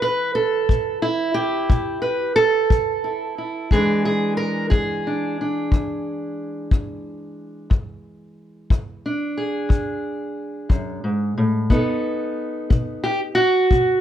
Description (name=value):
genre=acoustic country blues, solo or duo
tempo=60 BPM (dotted quarters)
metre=12/8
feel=straight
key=E mixolydian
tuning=A4 = 440 Hz
part: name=fingerpicked steel-string acoustic guitar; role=melody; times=0.0-14.0 s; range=E2 to B4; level=-20 LUFS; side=right 1 dB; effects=none
part: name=kick drum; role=drums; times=0.7-13.9 s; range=none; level=-19 LUFS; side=left 2 dB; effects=none
room=moderate studio reverb, RT60 0.6 s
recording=none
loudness=-19 LUFS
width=side -10 dB against mid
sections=0.0-14.0 A section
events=none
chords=0.0 A7(no3); 3.7 E7; 11.7 B7